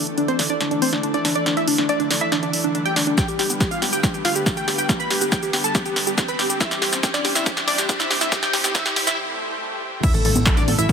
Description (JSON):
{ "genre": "uplifting trance", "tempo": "140 BPM", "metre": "4/4", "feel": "straight", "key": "unclear", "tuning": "A4 = 440 Hz", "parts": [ { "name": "wide unison pluck", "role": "melody", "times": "0.0-10.9 s", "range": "C4 to B5", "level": "-24 LUFS", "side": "equal", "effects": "auto-pan, sidechain pumping, dub echo" }, { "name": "plucky unison lead", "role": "second line", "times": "0.0-10.9 s", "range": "D4 to B5", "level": "-26 LUFS", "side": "equal", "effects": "sidechain pumping, ping-pong delay" }, { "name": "lush unison pad", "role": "sustained chords", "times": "0.0-10.9 s", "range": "B2 to D5", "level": "-29 LUFS", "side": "equal", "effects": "chorus, sidechain pumping" }, { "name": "riser, swell and impact", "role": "sound effects", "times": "0.2-10.9 s", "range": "none", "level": "-30 LUFS", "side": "equal", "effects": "none" }, { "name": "punchy analog drum machine", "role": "drums", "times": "0.1-10.9 s", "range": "congas, crash cymbal, handclaps, hi-hat, shaker, snare drum", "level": "-23 LUFS", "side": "equal", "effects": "overdrive, high-pass filter on snare, sidechain pumping on hats, high-pass filter on hats, sidechain pumping on perc, high-pass filter on perc, sidechain pumping on cymbals, high-pass filter on cymbals" }, { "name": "electronic kick drum", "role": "drums", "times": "3.2-10.9 s", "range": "none", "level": "-21 LUFS", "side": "equal", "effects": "overdrive" }, { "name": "plucky analog bass", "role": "bass", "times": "10.1-10.9 s", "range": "A1", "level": "-22 LUFS", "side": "equal", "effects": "sidechain pumping" } ], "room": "moderate huge ambient reverb, RT60 7.6 s", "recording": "high-pass filter", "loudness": "-18 LUFS", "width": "side -6 dB against mid", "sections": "0.0-10.0 A section", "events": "build-up 0.0-10.0; drum fill 0.0-9.2; filter sweep on synth pluck 0.0-10.0; filter sweep on digital synth lead 0.0-10.0; filter sweep 0.0-10.0; riser 0.2-9.2; break 9.2-10.0; swell 9.2-10.0; impact 10.0-10.9", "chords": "0.0 Dsus2; 3.2 G; 6.6 C; 10.0 Asus2" }